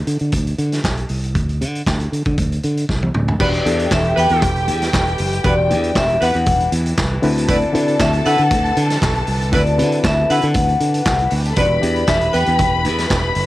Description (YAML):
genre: disco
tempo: 118 BPM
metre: 4/4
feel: straight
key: E minor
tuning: A4 = 440 Hz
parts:
  - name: modern bright fingered electric bass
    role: bass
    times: 0.1-13.5 s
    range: E1 to D3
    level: -19 LUFS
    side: equal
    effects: none
  - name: vintage drum kit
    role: drums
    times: 0.1-13.5 s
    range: crash cymbal, handclaps, hi-hat, kick drum, snare drum, toms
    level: -21 LUFS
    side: equal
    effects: cassette tape
  - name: vibraphone with medium hard mallets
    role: melody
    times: 3.4-12.8 s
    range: D5 to G5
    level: -18 LUFS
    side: left 2 dB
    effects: cassette tape
  - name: dark studio string section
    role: second line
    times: 3.4-13.5 s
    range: E4 to B5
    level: -24 LUFS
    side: left 1 dB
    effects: cassette tape
  - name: reed electric piano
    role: accompaniment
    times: 3.4-13.5 s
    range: D3 to B4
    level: -24 LUFS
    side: left 2 dB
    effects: fast tremolo, cassette tape
  - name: muted French horn section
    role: sustained chords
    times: 3.4-13.5 s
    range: C3 to B4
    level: -31 LUFS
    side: right 1 dB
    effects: cassette tape
  - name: warm horn section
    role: stabs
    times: 3.4-12.5 s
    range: B3 to B4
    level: -21 LUFS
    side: right 2 dB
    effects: cassette tape
room: light reverb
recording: home recording on cassette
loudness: -15 LUFS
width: side -16 dB against mid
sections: 0.0-3.4 A section; 3.4-13.5 B section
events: drum fill 2.9-3.4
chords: 0.0 N.C.; 3.4 Em9; 7.2 D13; 11.6 Em9